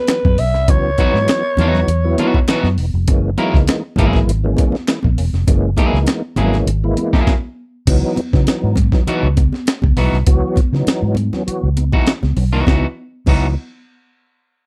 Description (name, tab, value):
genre	funk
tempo	100 BPM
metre	4/4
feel	straight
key	C# dorian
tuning	A4 = 441 Hz
part	breathy alto saxophone	melody	0.0-2.5 s	B4 to E5	-21 LUFS	equal	none
part	tonewheel organ	stabs	0.1-13.6 s	E3 to F#4	-24 LUFS	equal	overdrive, chorus vibrato, slow rotary speaker
part	breakbeat sampler-style drum kit	drums	0.1-13.4 s	crash cymbal, hi-hat, kick drum, snare drum	-18 LUFS	equal	none
part	group handclap	percussion	0.1-6.2 s	none	-34 LUFS	equal	none
part	vintage muted fingered electric bass	bass	0.2-13.5 s	E1 to C#3	-19 LUFS	equal	none
part	congas	percussion	0.3-13.5 s	none	-28 LUFS	equal	none
part	electric guitar at the edge of break-up	accompaniment	1.0-13.5 s	E3 to A#4	-22 LUFS	equal	none
room	little or no reverb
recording	dry, close 1970s-style studio recording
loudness	-16 LUFS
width	mono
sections	0.0-7.9 A section; 7.9-12.7 B section; 12.7-14.7 C section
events	stop 7.3-7.9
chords	0.0 C#m11; 3.1 F#9; 7.9 C#m11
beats	0.08 | 0.68 1.28 1.88 2.48 | 3.08 3.67 4.27 4.87 | 5.47 6.07 6.67 7.27 | 7.87 8.47 9.07 9.67 | 10.27 10.87 11.47 12.07 | 12.67 13.27